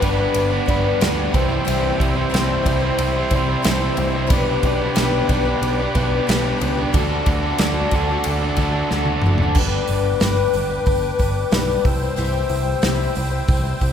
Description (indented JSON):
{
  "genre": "folk rock and heartland rock",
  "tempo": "91 BPM",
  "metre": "4/4",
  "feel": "straight",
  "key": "G major",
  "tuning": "A4 = 439 Hz",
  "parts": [
    { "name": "picked twelve-string acoustic guitar", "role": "accompaniment", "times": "0.0-13.9 s", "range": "C3 to C5", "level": "-24 LUFS", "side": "left 7 dB", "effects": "none" },
    { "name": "musette accordion", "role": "sustained chords", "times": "0.0-13.9 s", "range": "A4 to E6", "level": "-29 LUFS", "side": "right 1 dB", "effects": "none" },
    { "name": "crunchy overdriven guitar", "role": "riff", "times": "0.0-9.6 s", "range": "C3 to C5", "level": "-22 LUFS", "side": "right 2 dB", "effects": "none" },
    { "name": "picked electric bass", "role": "bass", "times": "0.0-13.9 s", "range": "F#1 to D2", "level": "-23 LUFS", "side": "equal", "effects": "none" },
    { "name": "natural country drum kit", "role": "drums", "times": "0.0-13.9 s", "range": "crash cymbal, hi-hat, kick drum, ride cymbal, snare drum, toms", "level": "-22 LUFS", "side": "right 1 dB", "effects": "none" }
  ],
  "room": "wet cathedral reverb, RT60 5.4 s",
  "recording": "recorded in a church or concert hall",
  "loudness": "-17 LUFS",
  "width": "side -8 dB against mid",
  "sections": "0.0-9.6 A section; 9.6-13.9 B section",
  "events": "drum fill 8.9-9.6",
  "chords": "0.0 G; 1.3 C; 4.3 G/B; 6.9 D; 9.6 G; 11.9 C"
}